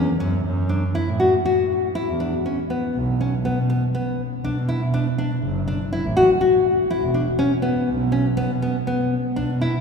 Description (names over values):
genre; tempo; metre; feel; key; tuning
contemporary instrumental, chamber music in an uneven meter; 121 BPM; 5/4; straight; unclear; A4 = 442 Hz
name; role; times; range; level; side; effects
nylon-string guitar; arpeggios; 0.0-9.7 s; B3 to F#4; -21 LUFS; left 2 dB; none
rich double bass; bass; 0.0-9.8 s; E1 to B2; -23 LUFS; right 1 dB; none
room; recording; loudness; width
wet cathedral reverb, RT60 4.9 s; recorded in a church or concert hall; -19 LUFS; side -5 dB against mid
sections
0.4-9.8 A section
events
none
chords
0.4 F#7(no3); 2.9 Bm; 5.4 F#7(no3); 7.9 N.C.